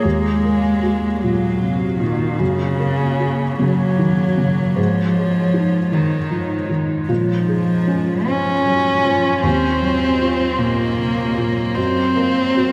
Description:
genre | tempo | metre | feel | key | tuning
neoclassical piano and strings | 51 BPM (dotted quarters) | 6/8 | rubato | unclear | A4 = 441 Hz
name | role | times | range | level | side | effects
dark cello | second line | 0.0-12.7 s | Db3 to Db4 | -20 LUFS | equal | delay
felt-muted upright piano | accompaniment | 0.0-12.7 s | Eb2 to Gb4 | -23 LUFS | equal | ensemble chorus
warbly tape-like pad | sustained chords | 0.0-12.7 s | Gb3 to F5 | -30 LUFS | equal | chorus, built-in reverb, phaser
room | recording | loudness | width
wet huge ambient reverb, RT60 7.8 s | dreamy mix soaked in reverb | -18 LUFS | mono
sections
0.0-12.7 A section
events
none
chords
0.0 Ebmadd9; 2.4 Gb; 4.8 Dbsus2/Ab; 7.1 Bbm7; 9.4 Ebmadd9; 11.8 Gb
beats
| 0.04 1.22 | 2.40 3.60 | 4.78 5.94 | 7.09 8.28 | 9.44 10.60 | 11.77

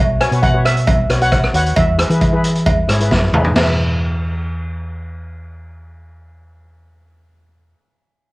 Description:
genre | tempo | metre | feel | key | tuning
calypso | 134 BPM | 4/4 | straight | E major | A4 = 440 Hz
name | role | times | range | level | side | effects
hollow-body short-scale fingered electric bass | bass | 0.0-7.7 s | B1 to E3 | -18 LUFS | equal | none
steel pan | melody | 0.2-3.1 s | E5 to G#5 | -20 LUFS | equal | none
steel pan | accompaniment | 0.2-7.8 s | E4 to C#5 | -23 LUFS | left 2 dB | cassette tape
street-band drum kit | drums | 0.2-3.7 s | crash cymbal, hi-hat, kick drum, rim click, snare drum, toms | -17 LUFS | equal | cassette tape
cowbell | percussion | 0.4-3.8 s | none | -21 LUFS | right 2 dB | none
room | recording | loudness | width
light reverb | home recording on cassette | -13 LUFS | side -21 dB against mid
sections
0.0-3.6 A section; 3.6-7.1 B section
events
drum fill 3.1-3.6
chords
0.0 Bsus2; 1.8 E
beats
0.43 0.88 1.32 | 1.77 2.22 2.66 3.11 | 3.56 4.00 4.45 4.90 | 5.34 5.79 6.24 6.68

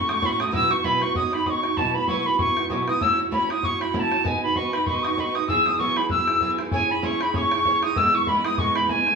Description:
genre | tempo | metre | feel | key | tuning
celtic folk, Celtic reel | 194 BPM | 4/4 | swing 56% on 8ths | E major | A4 = 440 Hz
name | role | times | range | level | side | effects
wooden whistle | melody | 0.0-9.2 s | G#5 to E6 | -22 LUFS | equal | none
mellow tin whistle | second line | 0.0-9.2 s | G#5 to F#6 | -27 LUFS | left 2 dB | none
picked steel-string acoustic guitar | accompaniment | 0.0-9.2 s | A2 to C#5 | -26 LUFS | right 5 dB | none
bodhran | percussion | 0.1-9.1 s | none | -31 LUFS | left 2 dB | none
room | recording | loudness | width
wet large studio reverb, RT60 0.9 s | band playing live in one room, small room ambience | -20 LUFS | side -5 dB against mid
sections
0.0-6.7 A section; 6.7-9.2 A section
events
none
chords
0.0 A6; 0.5 Bsus4; 1.2 Badd9; 1.8 Bsus4; 3.0 F#m7/A; 4.2 B; 5.5 Eadd9; 6.7 C#m; 8.0 E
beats
0.22 | 0.53 0.84 1.15 1.46 | 1.77 2.08 2.39 2.70 | 3.01 3.32 3.63 3.94 | 4.25 4.56 4.87 5.18 | 5.49 5.80 6.11 6.42 | 6.72 7.04 7.34 7.65 | 7.96 8.27 8.58 8.89

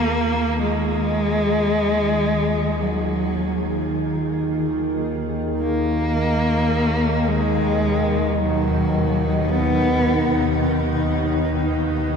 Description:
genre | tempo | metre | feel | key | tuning
dark ambient drone | free time | none | none | unclear | A4 = 441 Hz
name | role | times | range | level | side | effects
dark cello | melody | 0.0-10.6 s | Gb3 to B3 | -22 LUFS | equal | shimmer reverb, tape echo
granular cloud pad | sustained chords | 0.0-12.2 s | D#2 to Ab4 | -26 LUFS | left 2 dB | built-in reverb, shimmer reverb
analog drone | drone | 0.0-12.2 s | Eb2 to Eb3 | -22 LUFS | equal | chorus
room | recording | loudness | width
wet cathedral reverb, RT60 5.6 s | none | -18 LUFS | side -6 dB against mid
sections
0.0-12.2 A section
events
fade-in on ambient pad 0.0-12.2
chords
0.0 Ebm; 5.0 B/D#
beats
free time

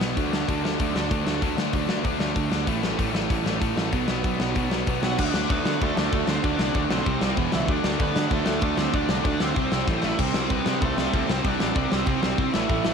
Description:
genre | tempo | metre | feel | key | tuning
punk rock | 192 BPM | 4/4 | straight | unclear | A4 = 442 Hz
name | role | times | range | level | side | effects
sludgy distorted guitar | riff | 0.0-12.9 s | E2 to D4 | -28 LUFS | right 14 dB | overdrive
tight distorted guitar | riff | 0.0-12.9 s | E2 to D4 | -29 LUFS | left 16 dB | distortion
fuzz picked electric bass | bass | 0.0-12.9 s | E1 to D3 | -30 LUFS | left 1 dB | overdrive
big rock drum kit | drums | 0.0-12.9 s | crash cymbal, hi-hat, kick drum, snare drum | -26 LUFS | left 1 dB | none
overdriven electric guitar | melody | 5.0-12.9 s | A3 to F#5 | -30 LUFS | right 3 dB | analog delay
room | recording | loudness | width
small room ambience | none | -22 LUFS | side -6 dB against mid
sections
0.0-5.2 A section; 5.2-12.9 B section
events
drum fill 9.9-10.2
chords
0.2 D5; 2.7 A5; 3.9 B5; 5.2 D5; 7.1 C5; 7.4 E5; 7.7 D5; 9.6 C5; 9.9 A5; 10.2 C5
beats
| 0.17 0.48 0.79 1.11 | 1.42 1.74 2.05 2.36 | 2.68 2.99 3.30 3.62 | 3.93 4.25 4.56 4.87 | 5.18 5.50 5.81 6.12 | 6.44 6.75 7.06 7.37 | 7.69 8.00 8.31 8.62 | 8.94 9.25 9.56 9.88 | 10.19 10.50 10.82 11.13 | 11.44 11.75 12.07 12.38 | 12.69

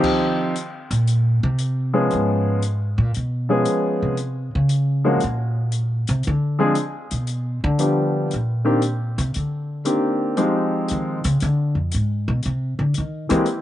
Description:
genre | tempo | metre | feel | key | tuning
jazz piano trio | 116 BPM | 4/4 | swing 69% on 8ths | Eb major | A4 = 438 Hz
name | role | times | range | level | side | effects
warm grand piano | melody | 0.0-13.4 s | Eb3 to Ab4 | -20 LUFS | left 1 dB | none
open jazz drum kit | drums | 0.0-13.6 s | crash cymbal, hi-hat, kick drum | -31 LUFS | left 6 dB | none
upright bass | bass | 0.9-13.6 s | F2 to Fb3 | -20 LUFS | equal | none
room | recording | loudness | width
light reverb | 1960s-style stereo, nothing above 10.9 kHz | -19 LUFS | side -13 dB against mid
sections
0.0-13.6 A section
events
upright bass solo 0.0-13.6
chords
0.0 Eb69; 2.1 Db7; 4.2 Gb (rootless); 6.2 D(b5, no3); 8.3 Cm9; 10.4 Fm9; 11.4 Fdim7; 12.4 Eb5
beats
| 0.04 0.55 1.07 1.59 | 2.11 2.62 3.14 3.66 | 4.17 4.69 5.21 5.72 | 6.24 6.75 7.27 7.79 | 8.30 8.82 9.33 9.85 | 10.37 10.88 11.40 11.91 | 12.43 12.94 13.46

